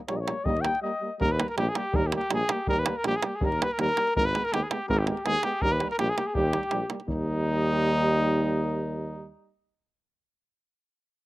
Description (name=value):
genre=balkan folk, Balkan brass band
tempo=163 BPM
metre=2/4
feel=straight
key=Eb major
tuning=A4 = 440 Hz
part: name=davul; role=percussion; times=0.0-7.3 s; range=none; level=-31 LUFS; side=right 1 dB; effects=none
part: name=mellow flugelhorn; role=second line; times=0.1-1.2, 3.4-9.3 s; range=Eb4 to G5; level=-34 LUFS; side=left 3 dB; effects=none
part: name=warm French horn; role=accompaniment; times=0.1-9.3 s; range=Bb3 to Cb4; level=-38 LUFS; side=left 4 dB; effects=none
part: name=warm euphonium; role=accompaniment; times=0.1-9.3 s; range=G3 to Ab3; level=-33 LUFS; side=right 4 dB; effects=slapback echo
part: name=warm tuba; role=bass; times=0.1-9.3 s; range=Ab1 to Eb2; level=-29 LUFS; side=equal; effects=none
part: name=mellow trumpet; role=melody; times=1.2-9.3 s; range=Eb4 to Cb5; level=-28 LUFS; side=equal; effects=slapback echo
room=little or no reverb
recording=recorded outdoors, with no room sound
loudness=-24 LUFS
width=side -17 dB against mid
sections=0.0-1.2 A section; 1.2-7.1 B section; 7.1-8.5 C section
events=flugelhorn solo 0.0-1.2; break 0.8-1.2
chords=0.0 Eb; 4.2 Abm; 5.6 Eb